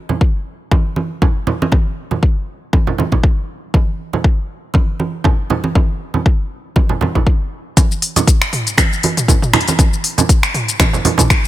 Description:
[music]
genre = house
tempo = 119 BPM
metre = 4/4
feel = swing 55% on 16ths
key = none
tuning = none
[part]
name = congas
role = percussion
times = 0.1-11.3 s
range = none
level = -19 LUFS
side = right 4 dB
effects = none
[part]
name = electronic kick drum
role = drums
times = 0.2-11.4 s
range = none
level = -13 LUFS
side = left 1 dB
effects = none
[part]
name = deep house drum kit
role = drums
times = 7.8-11.5 s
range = finger snaps, hi-hat, shaker, toms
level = -16 LUFS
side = left 1 dB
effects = low-pass filter on hats, low-pass filter on perc, low-pass filter on snare, low-pass filter on toms
[sound]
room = digital ambience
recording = none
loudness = -13 LUFS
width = side -14 dB against mid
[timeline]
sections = 0.0-7.8 A section; 7.8-11.5 B section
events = drop 7.8-11.5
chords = none

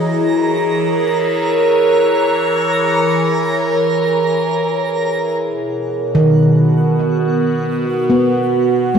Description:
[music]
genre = ambient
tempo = free time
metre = none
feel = none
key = unclear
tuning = A4 = 440 Hz
[part]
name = evolving wavetable pad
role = sustained chords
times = 0.0-9.0 s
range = B2 to F#5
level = -15 LUFS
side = right 1 dB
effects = phaser, built-in reverb
[part]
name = handpan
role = arpeggios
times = 0.0-9.0 s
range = D#3 to E4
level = -15 LUFS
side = equal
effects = tape echo
[part]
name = twinkling granular texture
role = texture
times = 0.0-9.0 s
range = F#5 to A#5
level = -24 LUFS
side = right 2 dB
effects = built-in reverb
[sound]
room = wet scoring stage reverb, RT60 2.0 s, studio ambience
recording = dark, warm production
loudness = -13 LUFS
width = side -7 dB against mid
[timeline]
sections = 0.0-5.4 A section; 5.4-9.0 B section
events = none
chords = 0.0 F#7/E; 5.4 B

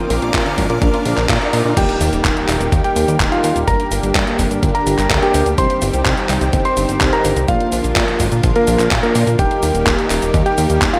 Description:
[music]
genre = italo disco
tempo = 126 BPM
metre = 4/4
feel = straight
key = Eb major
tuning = A4 = 440 Hz
[part]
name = lush unison pad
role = sustained chords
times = 0.0-11.0 s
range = D3 to D6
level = -24 LUFS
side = equal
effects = chorus
[part]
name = analog pluck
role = arpeggios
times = 0.0-1.7 s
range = D3 to F4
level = -29 LUFS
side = equal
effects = none
[part]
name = mellow synth brass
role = stabs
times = 0.0-11.0 s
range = Bb3 to C5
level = -25 LUFS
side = equal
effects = chorus, cassette tape
[part]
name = riser and impact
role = sound effects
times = 0.0-3.7 s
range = none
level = -28 LUFS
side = equal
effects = none
[part]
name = chorused synth bass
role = bass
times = 0.1-10.9 s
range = Eb1 to Bb2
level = -22 LUFS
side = equal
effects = none
[part]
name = gated 80s digital drum machine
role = drums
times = 0.1-11.0 s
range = cabasa, crash cymbal, handclaps, hi-hat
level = -23 LUFS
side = equal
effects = gated reverb, overdrive
[part]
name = electronic kick drum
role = drums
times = 0.3-10.9 s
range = none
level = -22 LUFS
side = equal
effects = overdrive
[part]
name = warm electric grand piano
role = melody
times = 1.8-11.0 s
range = Bb3 to C6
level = -21 LUFS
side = equal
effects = digital delay
[sound]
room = light reverb, digital ambience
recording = none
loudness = -16 LUFS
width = mono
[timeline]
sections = 0.0-1.8 A section; 1.8-11.0 B section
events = riser 0.0-1.8; impact 1.8-3.7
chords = 0.0 Bb; 1.8 Eb; 3.7 Gm; 5.6 Cm; 7.5 Bb; 9.4 Eb

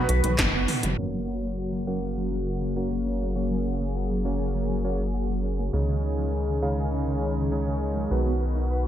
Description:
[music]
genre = synthwave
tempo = 101 BPM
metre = 4/4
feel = straight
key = F# major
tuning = A4 = 443 Hz
[part]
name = mellow synth brass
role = melody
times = 0.0-0.6 s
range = B4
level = -34 LUFS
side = right 3 dB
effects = chorus, ping-pong delay, shimmer reverb
[part]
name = warm analog pad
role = sustained chords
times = 0.0-8.9 s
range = C#3 to G#4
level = -30 LUFS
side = left 2 dB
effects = chorus, sidechain pumping, shimmer reverb
[part]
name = clear electric grand piano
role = stabs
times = 0.0-8.9 s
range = B2 to F#5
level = -33 LUFS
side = right 2 dB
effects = low-pass filter, ping-pong delay, shimmer reverb
[part]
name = chorused synth bass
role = bass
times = 0.0-8.9 s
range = F#1 to C#2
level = -28 LUFS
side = equal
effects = none
[part]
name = mellow electric guitar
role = riff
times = 0.1-8.9 s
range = C#3 to B4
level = -33 LUFS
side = right 2 dB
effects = wide subtle chorus, low-pass filter, digital delay
[part]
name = 80s electronic pad drums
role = drums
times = 0.1-7.9 s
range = crash cymbal, handclaps, hi-hat, snare drum, toms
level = -28 LUFS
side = equal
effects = gated reverb on snare and toms, low-pass filter on hats, studio reverb, low-pass filter on toms, low-pass filter on snare, low-pass filter on cymbals
[part]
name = electronic kick drum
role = drums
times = 0.4-0.5 s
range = none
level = -30 LUFS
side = equal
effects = studio reverb
[sound]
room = light reverb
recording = low-pass filter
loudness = -24 LUFS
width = side -11 dB against mid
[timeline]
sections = 1.0-8.9 A section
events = drum fill 0.0-1.0; band accent 0.4; filter sweep on electric grand piano 1.0-8.9; filter sweep on clean electric guitar 1.0-8.9; filter sweep 1.0-8.9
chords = 0.0 B; 1.0 F#; 5.7 C#sus2; 8.1 Bmaj7

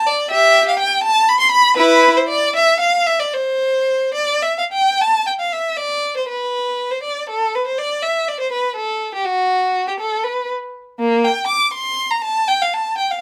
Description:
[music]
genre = classical, baroque-style suite movement for unaccompanied violin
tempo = 71-84 BPM (dotted quarters)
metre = 6/8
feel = rubato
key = C major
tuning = A4 = 440 Hz
[part]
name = rich violin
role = solo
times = 0.0-13.2 s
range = Bb3 to D6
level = -17 LUFS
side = equal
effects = none
[sound]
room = light reverb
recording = close, detailed microphones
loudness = -17 LUFS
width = mono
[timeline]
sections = 0.0-5.0 A section; 5.0-13.2 B section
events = none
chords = none

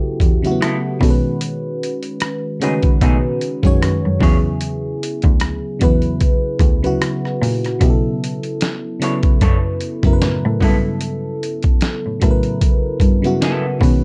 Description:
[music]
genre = R&B, neo-soul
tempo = 75 BPM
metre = 4/4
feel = swing 57% on 16ths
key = unclear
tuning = A4 = 439 Hz
[part]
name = FM electric piano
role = accompaniment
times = 0.0-14.0 s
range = C#3 to C#5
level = -22 LUFS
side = equal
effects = chorus, plate reverb
[part]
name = rich cello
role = bass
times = 0.2-14.0 s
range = D2 to B2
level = -22 LUFS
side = equal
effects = none
[part]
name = boom bap sampler-style drum kit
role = drums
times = 0.2-14.0 s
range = hi-hat, kick drum, rim click, snare drum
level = -19 LUFS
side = equal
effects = none
[part]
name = electric guitar through a small old amp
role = second line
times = 0.6-13.6 s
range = A3 to C#5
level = -28 LUFS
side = equal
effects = spring reverb, plate reverb
[sound]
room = light reverb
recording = dark, warm production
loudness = -17 LUFS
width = mono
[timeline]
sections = 0.0-14.0 A section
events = none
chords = 0.0 G69; 1.0 B69; 4.2 E13; 7.8 B7sus2; 10.6 G69

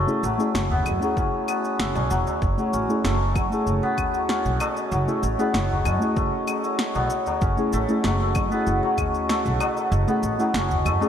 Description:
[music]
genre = organic downtempo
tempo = 96 BPM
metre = 4/4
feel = straight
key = F# dorian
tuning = A4 = 440 Hz
[part]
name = muted felt-like synth keys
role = accompaniment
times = 0.0-11.1 s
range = A3 to G#4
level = -27 LUFS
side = left 2 dB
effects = chorus, sidechain pumping, digital delay
[part]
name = warbly tape-like pad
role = sustained chords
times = 0.0-11.1 s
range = F#4 to F#5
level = -31 LUFS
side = right 4 dB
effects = chorus, built-in reverb, sidechain pumping
[part]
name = santur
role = arpeggios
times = 0.0-11.1 s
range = F#3 to E4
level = -26 LUFS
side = left 2 dB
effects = digital delay
[part]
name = upright bass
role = bass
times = 0.0-11.0 s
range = E1 to F#2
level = -26 LUFS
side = right 1 dB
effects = sidechain pumping
[part]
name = bronze singing bowl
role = texture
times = 0.0-11.1 s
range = none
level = barely audible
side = none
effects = none
[part]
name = electronic shaker, snare drum and claves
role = drums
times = 0.1-11.1 s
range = none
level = -30 LUFS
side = equal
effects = overdrive, gated reverb
[part]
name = tabla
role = percussion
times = 0.4-11.1 s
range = none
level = -34 LUFS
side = left 1 dB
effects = none
[part]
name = electronic kick drum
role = drums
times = 1.2-9.1 s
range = none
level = -26 LUFS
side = right 1 dB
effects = overdrive
[sound]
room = moderate lush hall reverb, RT60 2.7 s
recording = bright 1980s-style digital production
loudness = -21 LUFS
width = side -9 dB against mid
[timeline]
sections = 0.0-11.1 A section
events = none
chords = 0.0 F#m7

